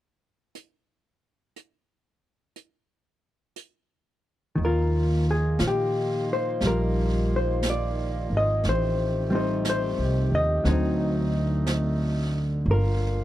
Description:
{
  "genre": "jazz ballad",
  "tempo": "60 BPM",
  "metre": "4/4",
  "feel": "swing 66% on 8ths",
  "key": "Eb major",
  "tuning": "A4 = 440 Hz",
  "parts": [
    { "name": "jazz brush drum kit", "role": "drums", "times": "0.5-13.2 s", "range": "brushed snare drum, hi-hat, snare drum", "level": "-36 LUFS", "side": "right 2 dB", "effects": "none" },
    { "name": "hollow-body jazz guitar", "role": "accompaniment", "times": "4.6-13.2 s", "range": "D3 to Eb5", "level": "-25 LUFS", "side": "left 1 dB", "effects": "none" },
    { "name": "mellow saxophone section", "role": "sustained chords", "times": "4.6-13.2 s", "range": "D3 to G4", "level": "-34 LUFS", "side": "right 2 dB", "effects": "none" },
    { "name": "upright bass", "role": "bass", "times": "4.6-13.2 s", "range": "G1 to Bb2", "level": "-26 LUFS", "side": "equal", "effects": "none" }
  ],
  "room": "small room ambience",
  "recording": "dry, close 1970s-style studio recording",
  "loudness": "-22 LUFS",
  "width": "side -14 dB against mid",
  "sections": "0.6-4.6 A section; 4.6-13.2 B section",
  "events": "none",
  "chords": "0.6 N.C.; 4.6 Ebadd9; 8.7 Am7b5; 10.7 D7b9; 12.7 Gm7"
}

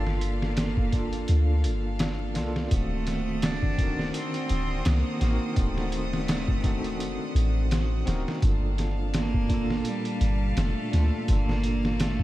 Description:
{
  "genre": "trip hop",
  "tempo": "84 BPM",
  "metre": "4/4",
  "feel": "swing 56% on 16ths",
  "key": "G minor",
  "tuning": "A4 = 440 Hz",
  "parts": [
    { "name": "clear cello", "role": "melody", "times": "0.0-12.2 s", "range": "G3 to D4", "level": "-32 LUFS", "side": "right 1 dB", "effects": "tape echo" },
    { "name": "overdriven tine electric piano", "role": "accompaniment", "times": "0.0-12.2 s", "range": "Bb2 to Bb4", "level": "-34 LUFS", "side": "equal", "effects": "fast tremolo, tape echo" },
    { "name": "bright chamber violin section", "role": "sustained chords", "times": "0.0-12.2 s", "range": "A4 to Eb6", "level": "-40 LUFS", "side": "left 1 dB", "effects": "none" },
    { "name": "soft 808-style bass", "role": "bass", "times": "0.0-12.2 s", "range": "D1 to D2", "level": "-27 LUFS", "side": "equal", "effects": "none" },
    { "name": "bowed-like drone", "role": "texture", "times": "0.1-12.2 s", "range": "D4", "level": "-42 LUFS", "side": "right 2 dB", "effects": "none" },
    { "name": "trip hop sampler-style drum kit", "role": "drums", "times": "0.1-12.2 s", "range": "hi-hat, kick drum, snare drum", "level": "-29 LUFS", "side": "equal", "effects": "none" }
  ],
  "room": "light reverb, digital ambience",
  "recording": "vinyl crackle",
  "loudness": "-24 LUFS",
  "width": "side -16 dB against mid",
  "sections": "0.0-12.2 A section",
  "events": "none",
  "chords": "0.0 Gm9; 2.7 D7b9b13; 8.4 Gm9"
}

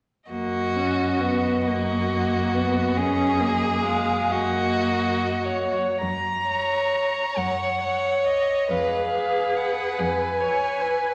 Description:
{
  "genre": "classical, slow romantic movement for string quartet",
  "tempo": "31-48 BPM (dotted quarters)",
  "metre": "12/8",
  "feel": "rubato",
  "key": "F# major",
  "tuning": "A4 = 442 Hz",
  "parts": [
    { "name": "rich violin", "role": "melody", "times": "0.3-11.1 s", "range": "C#5 to A#5", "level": "-30 LUFS", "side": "equal", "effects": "none" },
    { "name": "clear violin", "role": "second line", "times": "0.3-11.1 s", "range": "F#4 to C#5", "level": "-28 LUFS", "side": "equal", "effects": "none" },
    { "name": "clear viola", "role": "accompaniment", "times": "0.3-11.1 s", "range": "G#3 to C#5", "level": "-28 LUFS", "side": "equal", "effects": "none" },
    { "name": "rich cello", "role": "bass", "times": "0.3-11.1 s", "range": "F2 to F#2", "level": "-33 LUFS", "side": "equal", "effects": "none" }
  ],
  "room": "wet concert hall reverb, RT60 1.9 s",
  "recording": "none",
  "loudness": "-24 LUFS",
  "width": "mono",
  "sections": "0.3-6.0 A section; 6.0-11.1 B section",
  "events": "none",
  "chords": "0.3 F#; 8.7 Fdim"
}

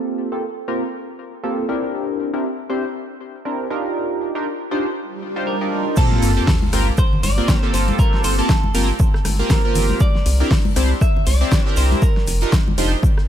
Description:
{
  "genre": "deep house",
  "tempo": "119 BPM",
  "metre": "4/4",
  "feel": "swing 57% on 16ths",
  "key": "G minor",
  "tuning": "A4 = 439 Hz",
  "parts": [
    { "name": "chorused polysynth", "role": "stabs", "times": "0.0-12.9 s", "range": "Bb3 to C5", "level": "-22 LUFS", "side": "equal", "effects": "sidechain pumping, ping-pong delay" },
    { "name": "swell and sub drop", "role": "sound effects", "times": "5.1-8.0 s", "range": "none", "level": "-26 LUFS", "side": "right 1 dB", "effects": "none" },
    { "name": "clean electric guitar", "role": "melody", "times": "5.5-12.5 s", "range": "A4 to E5", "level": "-27 LUFS", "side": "right 1 dB", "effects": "dub echo" },
    { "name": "damped 70s drum kit", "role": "drums", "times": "6.0-13.3 s", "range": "hi-hat, shaker, snare drum", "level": "-35 LUFS", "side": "right 2 dB", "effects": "high-pass filter on hats, high-pass filter on snare, high-pass filter on perc, high-pass filter on room" },
    { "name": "deep house drum kit", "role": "drums", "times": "6.0-13.3 s", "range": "crash cymbal, hi-hat, rim click, snare drum", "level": "-25 LUFS", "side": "left 1 dB", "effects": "overdrive" },
    { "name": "electronic kick drum", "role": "drums", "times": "6.0-13.1 s", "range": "none", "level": "-18 LUFS", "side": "equal", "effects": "overdrive" },
    { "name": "rubbery square bass", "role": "bass", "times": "6.2-13.0 s", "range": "F1 to C2", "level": "-18 LUFS", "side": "equal", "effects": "sidechain pumping" },
    { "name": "congas", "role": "percussion", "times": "6.6-13.1 s", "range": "none", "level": "-28 LUFS", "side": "left 3 dB", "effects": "none" }
  ],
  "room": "studio reverb",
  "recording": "none",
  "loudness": "-16 LUFS",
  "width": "side -10 dB against mid",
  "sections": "0.0-6.0 A section; 6.0-13.3 B section",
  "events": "filter sweep on analog polysynth 0.0-6.0; swell 5.1-6.0; drop 6.0-13.3; impact 6.0-8.0",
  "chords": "0.0 Gm11; 1.9 C9; 4.0 F13sus4; 6.0 Gm11; 10.0 C9; 12.0 F13sus4"
}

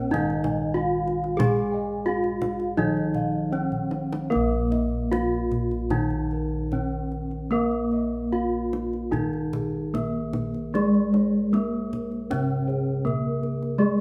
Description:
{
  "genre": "Javanese gamelan",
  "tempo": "75-100 BPM",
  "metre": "4/4",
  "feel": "straight",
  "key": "Bb slendro",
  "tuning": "A4 = 443 Hz",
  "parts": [
    { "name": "gamelan-type bronze metallophone", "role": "melody", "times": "0.0-14.0 s", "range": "Ab3-40c to Ab4-40c", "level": "-29 LUFS", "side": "equal", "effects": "none" },
    { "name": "gamelan-type bronze metallophone", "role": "accompaniment", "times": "0.0-14.0 s", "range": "C3+40c to Bb3", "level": "-32 LUFS", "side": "equal", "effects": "none" },
    { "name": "gamelan-type bronze metallophone", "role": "arpeggios", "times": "0.0-4.3, 10.7-14.0 s", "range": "Ab4-40c to Ab5-40c", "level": "-38 LUFS", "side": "equal", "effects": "none" },
    { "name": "gamelan-type bossed gongs", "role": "bass", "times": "0.0-14.0 s", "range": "Bb1 to Bb4", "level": "-34 LUFS", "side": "equal", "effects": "none" },
    { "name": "gamelan-type bossed gongs", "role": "arpeggios", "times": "0.1-14.0 s", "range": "Ab4-40c to Ab5-40c", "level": "-38 LUFS", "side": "equal", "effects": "none" },
    { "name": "kendang", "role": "percussion", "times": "0.1-14.0 s", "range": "none", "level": "-34 LUFS", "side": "equal", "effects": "none" }
  ],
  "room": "moderate large studio reverb, RT60 1.2 s",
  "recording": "band playing live in one room",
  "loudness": "-25 LUFS",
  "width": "mono",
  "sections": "0.0-4.3 A section; 4.3-14.0 B section",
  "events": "drum fill 3.7-4.3",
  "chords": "none"
}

